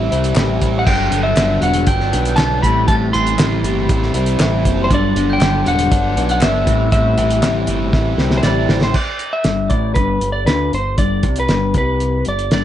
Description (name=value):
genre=indie rock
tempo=119 BPM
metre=4/4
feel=straight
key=G major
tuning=A4 = 436 Hz
part: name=lightly driven lead guitar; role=melody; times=0.0-12.6 s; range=B4 to C6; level=-20 LUFS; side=equal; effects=slapback echo, plate reverb
part: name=biting overdriven guitar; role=riff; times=0.0-9.0 s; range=G2 to E4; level=-22 LUFS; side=right 7 dB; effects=lush chorus, slapback echo
part: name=electric guitar through a small old amp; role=riff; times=0.0-12.6 s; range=G2 to E4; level=-21 LUFS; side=left 7 dB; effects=wide subtle chorus
part: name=growling picked electric bass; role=bass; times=0.0-12.6 s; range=E1 to D2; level=-20 LUFS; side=equal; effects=overdrive
part: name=cloth-damped thuddy drum kit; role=drums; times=0.1-12.6 s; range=crash cymbal, hi-hat, kick drum, snare drum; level=-18 LUFS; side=equal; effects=none
part: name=group handclap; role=percussion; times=0.4-8.6 s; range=none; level=-28 LUFS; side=left 4 dB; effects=none
part: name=glockenspiel with soft plastic mallets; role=second line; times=0.8-8.6 s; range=C6 to C7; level=-31 LUFS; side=left 4 dB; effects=plate reverb
room=light reverb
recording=nothing above 10.5 kHz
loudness=-13 LUFS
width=side -11 dB against mid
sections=0.0-9.0 A section; 9.0-12.6 B section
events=drum fill 7.9-9.0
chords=0.0 Am7; 0.9 Gmaj7; 2.6 Am7; 4.9 Gmaj7; 6.7 Am7; 9.0 G